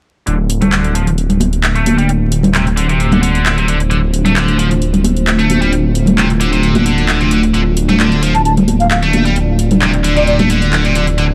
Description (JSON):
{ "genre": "breakbeat, breaks", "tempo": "132 BPM", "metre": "4/4", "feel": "straight", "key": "D minor", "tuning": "A4 = 443 Hz", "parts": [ { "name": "deep dark ambient pad", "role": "sustained chords", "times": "1.6-11.3 s", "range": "A3 to D5", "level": "-20 LUFS", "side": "equal", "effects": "chorus, built-in reverb" }, { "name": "scooped high-gain guitar", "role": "riff", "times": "0.3-11.2 s", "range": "C3 to A3", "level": "-20 LUFS", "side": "equal", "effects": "distortion, tube saturation, low-pass filter, delay" }, { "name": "detuned saw bass", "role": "bass", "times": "0.3-11.3 s", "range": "D1", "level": "-17 LUFS", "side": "equal", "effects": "tube saturation" }, { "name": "house drum kit", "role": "drums", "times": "0.3-11.3 s", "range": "handclaps, hi-hat", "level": "-22 LUFS", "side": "equal", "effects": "none" }, { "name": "congas", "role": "percussion", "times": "0.6-10.5 s", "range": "none", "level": "-18 LUFS", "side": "equal", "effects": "none" }, { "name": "mellow hollow concert flute", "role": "melody", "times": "8.3-10.3 s", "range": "D5 to A5", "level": "-20 LUFS", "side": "equal", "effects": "old record sound, delay" } ], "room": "light reverb", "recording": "vinyl crackle", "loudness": "-13 LUFS", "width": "mono", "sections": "0.3-11.3 A section", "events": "none", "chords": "0.3 Dm7", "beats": "| 0.27 0.73 1.18 1.64 | 2.09 2.54 3.00 3.45 | 3.91 4.36 4.82 5.27 | 5.73 6.18 6.64 7.09 | 7.54 8.00 8.45 8.91 | 9.36 9.82 10.27 10.73 | 11.18" }